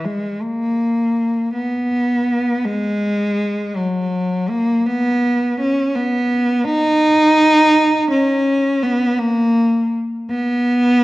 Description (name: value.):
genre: classical, free, expressive piece for unaccompanied cello.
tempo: 55 BPM (dotted quarters).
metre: 6/8.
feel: uneven beats, rubato.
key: unclear.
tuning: A4 = 436 Hz.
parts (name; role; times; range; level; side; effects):
rich cello; solo; 0.0-11.0 s; F#3 to D#4; -15 LUFS; equal; none.
room: wet recital hall reverb, RT60 1.6 s.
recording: worn, warbling old tape, cassette tape, warbly pitch drift.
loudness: -15 LUFS.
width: side -17 dB against mid.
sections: 0.0-11.0 A section.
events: none.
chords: none.